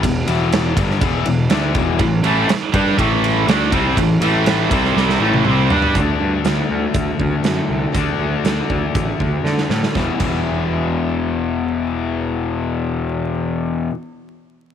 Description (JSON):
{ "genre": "classic rock", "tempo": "121 BPM", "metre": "4/4", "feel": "straight", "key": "E minor", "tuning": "A4 = 439 Hz", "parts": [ { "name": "distorted electric guitar", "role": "riff", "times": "0.0-13.9 s", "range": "E2 to G4", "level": "-20 LUFS", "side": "left 8 dB", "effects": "distortion" }, { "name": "fuzz picked electric bass", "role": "bass", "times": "0.0-13.9 s", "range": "E1 to D3", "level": "-21 LUFS", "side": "right 1 dB", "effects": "overdrive" }, { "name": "huge arena drum kit", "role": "drums", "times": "0.0-10.3 s", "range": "crash cymbal, hi-hat, kick drum, ride cymbal, snare drum, toms", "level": "-21 LUFS", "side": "right 3 dB", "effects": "none" }, { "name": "tight distorted guitar", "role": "riff", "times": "2.0-6.0 s", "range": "A2 to G4", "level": "-19 LUFS", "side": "right 11 dB", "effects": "distortion" }, { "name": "picked steel-string acoustic guitar", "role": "accompaniment", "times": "5.9-14.0 s", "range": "E2 to F#4", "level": "-30 LUFS", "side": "right 9 dB", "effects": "none" } ], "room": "light reverb, small room ambience", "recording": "1960s-style stereo with parts hard left and right, vinyl crackle", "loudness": "-15 LUFS", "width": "side -9 dB against mid", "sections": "0.0-6.0 A section; 6.0-9.9 B section; 9.9-14.0 C section", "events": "drum fill 5.0-6.0, 9.4-9.9", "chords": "0.0 Em; 2.0 A5; 6.0 D; 9.9 Em", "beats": "| 0.03 0.53 1.02 1.51 | 2.01 2.50 2.99 3.48 | 3.98 4.47 4.96 5.46 | 5.95 6.45 6.95 7.44 | 7.94 8.44 8.94 9.44 | 9.95 10.45 10.95 11.46 | 11.96 12.46 12.97 13.47" }